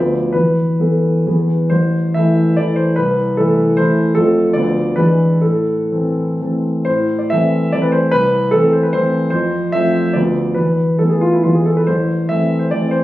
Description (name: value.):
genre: classical, romantic triple-time dance for piano with dotted rhythms.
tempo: 118-165 BPM.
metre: 3/4.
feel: rubato.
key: A minor.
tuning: A4 = 440 Hz.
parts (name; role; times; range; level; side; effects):
warm grand piano; solo; 0.0-13.0 s; A1 to E5; -13 LUFS; equal; none.
room: light reverb.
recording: recorded on a phone in the room, studio reverb, compression, nothing above 10.3 kHz.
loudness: -13 LUFS.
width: side -15 dB against mid.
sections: 0.0-6.9 A section; 6.9-13.0 A section.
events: none.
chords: 0.3 Esus4; 1.3 E; 1.7 Am; 3.0 Am/C; 4.2 F; 4.6 Bdim/D; 5.0 E7; 5.4 Am; 8.1 Am/C; 9.3 F; 10.1 Bdim/D; 10.6 Esus4; 11.9 Am.